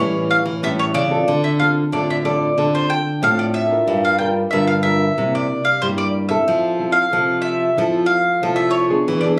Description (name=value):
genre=samba and choro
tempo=92 BPM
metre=4/4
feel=straight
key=D minor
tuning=A4 = 441 Hz
part: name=mandolin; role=melody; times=0.0-9.3 s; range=C5 to G5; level=-21 LUFS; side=equal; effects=none
part: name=nylon-string guitar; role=accompaniment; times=0.0-9.4 s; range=G2 to Bb4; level=-24 LUFS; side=equal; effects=none
part: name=nylon-string guitar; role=bass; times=0.0-9.4 s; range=G2 to G3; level=-23 LUFS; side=equal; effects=none
room=light reverb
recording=recorded on a phone in the room, club reverb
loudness=-18 LUFS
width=mono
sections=0.0-1.3 A section; 1.3-9.4 B section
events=none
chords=0.0 A7; 1.3 Dm7; 3.9 Gm7; 5.2 C7; 6.5 Fmaj7